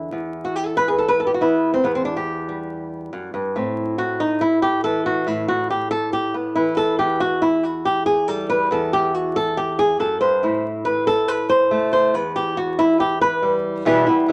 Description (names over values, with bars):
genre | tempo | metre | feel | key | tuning
flamenco | 140 BPM | 4/4 | straight | E minor | A4 = 436 Hz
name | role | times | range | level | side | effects
flamenco guitar | solo | 0.0-14.3 s | E2 to C5 | -20 LUFS | equal | none
room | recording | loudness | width
wet studio reverb, RT60 0.8 s | vinyl crackle | -20 LUFS | mono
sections
0.1-13.9 A section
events
nylon-string guitar solo 0.1-13.9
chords
0.1 Em; 3.6 Am; 7.0 Emadd9; 10.4 Am; 12.1 Em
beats
| 0.12 0.55 0.98 1.41 | 1.84 2.27 2.70 3.13 | 3.56 3.98 4.41 4.84 | 5.27 5.70 6.13 6.56 | 6.99 7.42 7.85 8.28 | 8.71 9.14 9.57 9.99 | 10.42 10.85 11.28 11.71 | 12.14 12.57 13.00 13.43 | 13.86 14.28